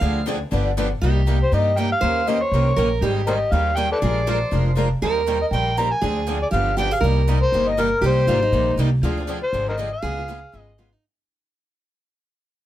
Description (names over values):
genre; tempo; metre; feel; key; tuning
acoustic string swing (jazz manouche); 240 BPM; 4/4; swing 56% on 8ths; C minor; A4 = 439 Hz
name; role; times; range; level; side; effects
picked steel-string acoustic guitar; second line; 0.0-11.0 s; Eb4 to F5; -26 LUFS; right 5 dB; none
picked steel-string acoustic guitar; accompaniment; 0.0-10.9 s; C3 to Bb4; -27 LUFS; left 4 dB; none
picked swing-style acoustic guitar; accompaniment; 0.0-10.9 s; C3 to C5; -31 LUFS; right 5 dB; none
upright bass; bass; 0.0-10.9 s; F1 to G2; -22 LUFS; equal; none
overdriven harmonica; melody; 1.4-10.9 s; A4 to Bb5; -21 LUFS; left 1 dB; none
room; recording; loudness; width
little or no reverb; close, detailed microphones; -18 LUFS; side -13 dB against mid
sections
0.0-1.0 A section; 1.0-9.0 B section; 9.0-11.0 C section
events
steel-string acoustic guitar solo 0.0-1.0; fade-out 9.0-11.0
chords
0.0 Dm7b5; 0.5 G7; 1.0 Cm7; 2.0 Eb7; 3.0 Abmaj7; 4.0 Bb7; 5.0 Eb6; 6.0 Dm7b5; 6.5 G7; 7.0 Cm7; 9.0 Dm7b5; 10.0 Db7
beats
| 0.02 0.27 0.52 0.77 | 1.02 1.27 1.51 1.76 | 2.02 2.27 2.52 2.77 | 3.02 3.27 3.52 3.77 | 4.01 4.27 4.52 4.77 | 5.02 5.27 5.52 5.77 | 6.02 6.27 6.52 6.77 | 7.02 7.27 7.52 7.77 | 8.02 8.27 8.52 8.77 | 9.02 9.27 9.52 9.78 | 10.03 10.28 10.53 10.78